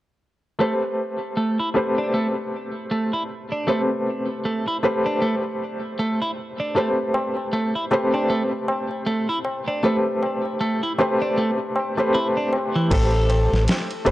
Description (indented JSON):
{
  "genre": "trip hop",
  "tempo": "78 BPM",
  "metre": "4/4",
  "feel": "swing 58% on 16ths",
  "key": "A minor",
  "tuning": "A4 = 442 Hz",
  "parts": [
    { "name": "felt-muted upright piano", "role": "accompaniment", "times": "0.6-14.1 s", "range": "A3 to C5", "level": "-23 LUFS", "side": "equal", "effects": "tremolo, low-pass filter, tape echo" },
    { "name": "twelve-string electric guitar", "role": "arpeggios", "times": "0.6-12.9 s", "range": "E3 to E4", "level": "-25 LUFS", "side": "right 1 dB", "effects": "vintage 12-bit sampler grit, low-pass filter, tape echo" },
    { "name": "tabla", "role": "percussion", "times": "6.8-14.1 s", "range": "none", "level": "-29 LUFS", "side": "left 1 dB", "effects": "none" },
    { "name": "clean lap steel guitar", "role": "melody", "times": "12.9-13.6 s", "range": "A4", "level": "-25 LUFS", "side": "left 1 dB", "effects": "vintage 12-bit sampler grit, tape echo" },
    { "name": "deep dub fingered electric bass", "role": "bass", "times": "12.9-14.1 s", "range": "E1 to A1", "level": "-20 LUFS", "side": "equal", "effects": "none" },
    { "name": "boom bap sampler-style drum kit", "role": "drums", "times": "12.9-14.1 s", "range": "crash cymbal, kick drum, ride cymbal, snare drum", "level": "-24 LUFS", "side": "equal", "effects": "small room ambience" }
  ],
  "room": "light reverb, digital ambience",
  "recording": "dry, gritty hardware recording",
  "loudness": "-20 LUFS",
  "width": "side -15 dB against mid",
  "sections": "0.6-12.9 A section; 12.9-14.1 B section",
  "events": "none",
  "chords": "0.6 Am9",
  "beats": "| 0.60 1.37 2.14 2.91 | 3.68 4.45 5.22 5.99 | 6.75 7.52 8.29 9.06 | 9.83 10.60 11.37 12.14 | 12.91 13.68"
}